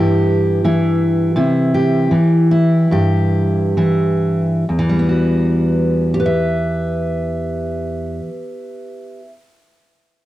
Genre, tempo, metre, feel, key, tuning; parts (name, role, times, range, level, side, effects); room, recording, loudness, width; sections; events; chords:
folk, solo fingerstyle acoustic guitar; 62-89 BPM; 4/4; straight; E minor; A4 = 442 Hz
fingerpicked steel-string acoustic guitar; solo; 0.0-9.3 s; E2 to E5; -14 LUFS; equal; cassette tape
wet small room reverb, RT60 0.5 s; home recording on cassette; -14 LUFS; side -15 dB against mid
0.0-4.7 A section; 4.7-8.5 B section
slowing down 0.0-4.7
0.0 C; 4.7 Emadd9